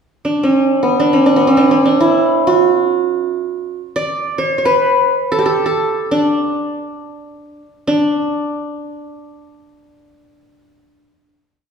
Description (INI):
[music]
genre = Arabic maqam ensemble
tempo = free time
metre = none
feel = none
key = D maqam rast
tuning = A4 = 440 Hz
[part]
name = qanun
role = solo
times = 0.2-11.1 s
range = B3 to D5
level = -13 LUFS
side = right 1 dB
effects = none
[sound]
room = wet recital hall reverb, RT60 1.5 s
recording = recorded in a church or concert hall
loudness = -13 LUFS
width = side -6 dB against mid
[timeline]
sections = 0.0-7.9 free-time section; 7.9-11.7 final note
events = none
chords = none